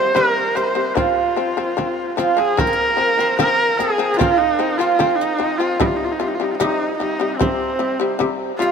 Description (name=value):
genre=mongolian traditional, Mongolian folk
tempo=75 BPM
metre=4/4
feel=straight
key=F minor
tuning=A4 = 440 Hz
part: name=clear horsehead fiddle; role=melody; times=0.0-8.7 s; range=C4 to C5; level=-19 LUFS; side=equal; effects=none
part: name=guzheng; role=second line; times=0.0-8.7 s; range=C4 to C5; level=-23 LUFS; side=right 7 dB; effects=none
part: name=shamisen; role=arpeggios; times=0.0-8.7 s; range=C3 to C4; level=-22 LUFS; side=left 6 dB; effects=none
part: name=frame drum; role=percussion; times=0.2-8.7 s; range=none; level=-23 LUFS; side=right 2 dB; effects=none
room=wet huge ambient reverb, RT60 8.2 s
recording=minimal, uncompressed stereo recording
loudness=-16 LUFS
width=side -6 dB against mid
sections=0.0-2.6 A section; 2.6-8.7 B section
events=none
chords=0.0 C5; 1.0 F5; 5.8 C5